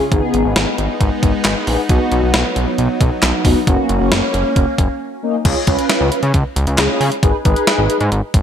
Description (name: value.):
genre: synth-pop.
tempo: 135 BPM.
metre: 4/4.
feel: straight.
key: unclear.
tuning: A4 = 438 Hz.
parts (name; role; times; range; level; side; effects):
mellow synth brass; accompaniment; 0.0-8.0 s; A#3 to B4; -19 LUFS; left 1 dB; chorus.
phased analog pad; sustained chords; 0.0-5.4 s; F#3 to E#4; -21 LUFS; equal; phaser, chorus.
fat analog bass; bass; 0.1-8.4 s; E#1 to C#3; -18 LUFS; equal; none.
clean 12-bit digital drum machine; drums; 0.1-8.4 s; crash cymbal, handclaps, hi-hat, kick drum, snare drum; -16 LUFS; equal; gated reverb.
room: moderate plate reverb, RT60 1.6 s.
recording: bright 1980s-style digital production.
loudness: -13 LUFS.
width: side -9 dB against mid.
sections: 0.0-5.5 A section; 5.5-8.4 B section.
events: break 5.0-5.5.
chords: 0.1 G#m; 1.9 B; 3.7 F#; 5.5 C#; 7.2 G#m.